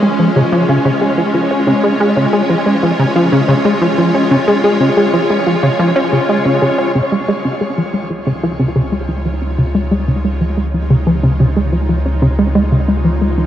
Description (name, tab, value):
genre	ambient, sequencer-driven space music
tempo	91 BPM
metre	4/4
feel	straight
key	unclear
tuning	A4 = 440 Hz
part	evolving wavetable pad	sustained chords	0.0-13.5 s	G#3 to C#5	-18 LUFS	equal	ensemble chorus, built-in reverb
part	plucky analog bass	riff	0.0-13.5 s	C#3 to C#4	-13 LUFS	equal	analog chorus, analog delay
part	analog drone	bass	8.5-13.5 s	C#2	-18 LUFS	equal	chorus
room	wet shimmer reverb, RT60 6.4 s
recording	worn, warbling old tape, cassette tape, warbly pitch drift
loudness	-11 LUFS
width	side -11 dB against mid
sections	0.0-6.9 A section; 6.9-13.5 B section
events	filter sweep on analog synth bass 0.0-6.9, 6.9-13.5; fade-in on ambient pad 6.9-13.5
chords	0.0 C#; 6.9 C#add9